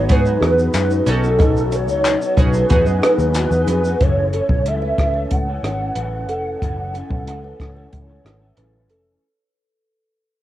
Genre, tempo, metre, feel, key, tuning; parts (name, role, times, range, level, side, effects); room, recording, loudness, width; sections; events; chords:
indie pop, bedroom pop; 92 BPM; 4/4; straight; F# dorian; A4 = 443 Hz
warbly nostalgic lead; melody; 0.0-8.6 s; A4 to F#5; -20 LUFS; right 1 dB; tremolo, ensemble chorus, cassette tape, analog delay
chorused retro synth keys; accompaniment; 0.0-4.0 s; B3 to A4; -27 LUFS; right 2 dB; cassette tape
electric guitar through a small old amp; accompaniment; 0.0-9.2 s; F#2 to A4; -25 LUFS; left 5 dB; ensemble chorus, warbly pitch drift, cassette tape
vintage muted picked electric bass; bass; 0.0-9.2 s; E#1 to G#2; -21 LUFS; equal
compact cocktail drum kit; drums; 0.1-9.0 s; hi-hat, kick drum, rim click, shaker; -19 LUFS; equal; cassette tape
kalimba; second line; 0.4-9.1 s; G#4 to D#5; -28 LUFS; right 4 dB; analog chorus, cassette tape, analog delay
group handclap; percussion; 0.8-3.5 s; -24 LUFS; left 5 dB
light reverb; home recording on cassette; -15 LUFS; side -13 dB against mid
0.0-4.0 A section; 4.0-9.2 B section
fade-out 4.0-9.2
0.0 G#m7; 1.1 B7; 2.7 Emaj9; 4.0 F#m7